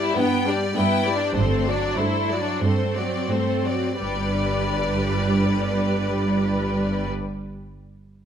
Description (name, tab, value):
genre	quick classical-period movement for string orchestra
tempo	84-103 BPM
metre	4/4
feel	rubato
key	G major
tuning	A4 = 440 Hz
part	bright symphonic violin section	melody	0.0-7.1 s	C5 to G5	-29 LUFS	left 4 dB	none
part	clear symphonic violin section	second line	0.0-7.1 s	G3 to E4	-26 LUFS	left 3 dB	none
part	clear symphonic viola section	accompaniment	0.0-7.1 s	F#3 to B4	-27 LUFS	right 1 dB	none
part	rich symphonic cello section	bass	0.0-7.1 s	G2	-26 LUFS	right 2 dB	none
part	rich symphonic double bass section	bass	1.4-7.1 s	G1	-27 LUFS	right 3 dB	none
room	moderate scoring stage reverb, RT60 1.5 s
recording	none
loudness	-20 LUFS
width	side -8 dB against mid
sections	0.0-4.0 A section; 4.0-6.8 B section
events	slowing down 0.0-4.0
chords	0.0 G; 1.4 D7/G; 4.0 G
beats	0.17 0.76 | 1.37 1.99 2.63 3.29 | 4.00 4.71 5.41 6.12